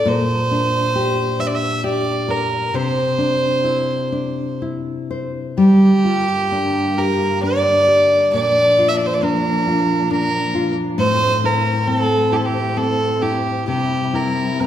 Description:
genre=celtic folk, Celtic slow air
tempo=67 BPM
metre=3/4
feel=rubato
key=G dorian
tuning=A4 = 437 Hz
part: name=warm fiddle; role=melody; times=0.0-14.7 s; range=G4 to E5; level=-18 LUFS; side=right 1 dB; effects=none
part: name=nylon-string guitar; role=accompaniment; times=0.0-14.7 s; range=A2 to C5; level=-19 LUFS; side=left 2 dB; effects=none
part: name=dark symphonic string section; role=sustained chords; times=5.6-14.7 s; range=G2 to E4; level=-25 LUFS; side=equal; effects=none
room=wet recital hall reverb, RT60 1.6 s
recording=recorded in a church or concert hall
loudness=-15 LUFS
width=side -10 dB against mid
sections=0.0-5.6 A section; 5.6-14.7 B section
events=none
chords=0.1 Gm/Bb; 2.7 Cadd9; 5.6 Gm; 8.3 Bb; 11.0 Am; 13.7 C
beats=| 0.06 0.95 1.83 | 2.73 3.64 4.60 | 5.57 6.51 7.43 | 8.33 9.23 10.11 | 10.99 11.87 12.76 | 13.66 14.57

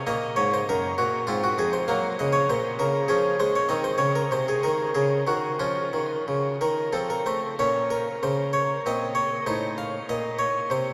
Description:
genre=classical, baroque-style suite movement for harpsichord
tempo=88-101 BPM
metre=3/4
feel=rubato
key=Bb minor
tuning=A4 = 441 Hz
part: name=harpsichord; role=solo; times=0.0-10.9 s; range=F2 to F5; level=-25 LUFS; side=equal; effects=none
room=wet huge ambient reverb, RT60 7.8 s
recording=in a vast, echoing space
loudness=-25 LUFS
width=mono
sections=0.0-7.6 A section; 7.6-10.9 B section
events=none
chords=0.1 Gb; 1.3 Fm/Ab; 1.9 Bbmadd9; 3.1 Db/F; 3.7 Cm7b5; 5.6 Db69; 6.9 F; 7.6 Bbm; 8.9 Bbmadd9; 9.5 Adim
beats=| 0.07 0.68 1.28 | 1.88 2.49 3.09 | 3.70 4.31 4.93 | 5.59 6.27 6.94 | 7.59 8.22 8.85 | 9.47 10.10 10.72

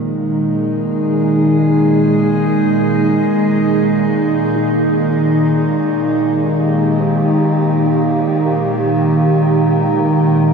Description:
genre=ambient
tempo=62 BPM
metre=3/4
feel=straight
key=unclear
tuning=A4 = 440 Hz
part: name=evolving wavetable pad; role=sustained chords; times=0.0-10.5 s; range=Bb2 to Ab4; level=-12 LUFS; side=right 1 dB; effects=chorus, built-in reverb, shimmer reverb
part: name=muted felt-like synth keys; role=arpeggios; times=0.0-10.5 s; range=Bb3 to F5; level=-29 LUFS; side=left 2 dB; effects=none
room=wet huge ambient reverb, RT60 8.0 s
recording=none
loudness=-12 LUFS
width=side -5 dB against mid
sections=0.0-10.5 A section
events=filter sweep on ambient pad 0.0-10.5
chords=0.0 Absus2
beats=0.67 | 1.65 2.62 3.59 | 4.56 5.53 6.51 | 7.48 8.46 9.46 | 10.46

